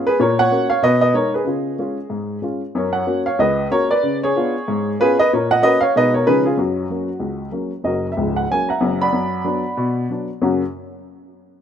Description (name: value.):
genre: jazz, stride piano.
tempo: 188 BPM.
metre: 4/4.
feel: swing 58% on 8ths.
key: F# major.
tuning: A4 = 440 Hz.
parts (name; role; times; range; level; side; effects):
warm upright piano; solo; 0.0-10.6 s; C#1 to B5; -16 LUFS; equal; none.
room: light reverb, studio reverb.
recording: rough home demo mix.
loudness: -16 LUFS.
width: side -8 dB against mid.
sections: 0.0-7.8 A section; 7.8-10.4 B section; 10.4-11.6 C section.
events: none.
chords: 0.2 F#/A#; 0.8 G#m/B; 1.5 C#; 2.7 F#; 4.0 C#7b9; 4.7 C#7/G#; 5.3 F#/A#; 5.9 G#m/B; 6.3 C#9; 6.6 F#; 7.8 F#7; 9.1 Bm/F#; 10.4 F#.